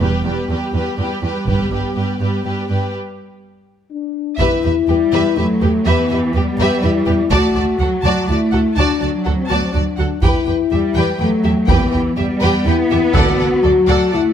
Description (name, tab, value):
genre	cinematic, epic orchestral film score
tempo	123 BPM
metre	3/4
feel	straight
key	unclear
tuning	A4 = 441 Hz
part	rich symphonic violin section	melody	0.0-14.2 s	B4 to A5	-26 LUFS	left 1 dB	none
part	warm symphonic violin section	second line	0.0-14.2 s	G4 to D5	-24 LUFS	left 2 dB	none
part	warm symphonic viola section	accompaniment	0.0-14.2 s	G3 to A4	-25 LUFS	right 2 dB	none
part	dark French horn section	sustained chords	0.0-14.3 s	A3 to G4	-18 LUFS	left 5 dB	none
part	warm studio double bass section	bass	0.0-1.7, 4.4-14.2 s	E1 to E2	-20 LUFS	right 3 dB	none
part	warm symphonic cello section	bass	0.0-14.3 s	E2 to B3	-21 LUFS	right 2 dB	none
part	taiko ensemble	drums	1.5-13.6 s	none	-20 LUFS	right 1 dB	none
part	timpani	percussion	13.2-13.8 s	D3	-26 LUFS	equal	none
room	light reverb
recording	none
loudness	-14 LUFS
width	side -9 dB against mid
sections	0.0-4.4 A section; 4.4-14.3 B section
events	build-up 0.0-4.4; break 2.9-4.4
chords	0.0 Em; 1.5 G; 4.4 Em; 7.3 D; 10.2 Em; 13.2 D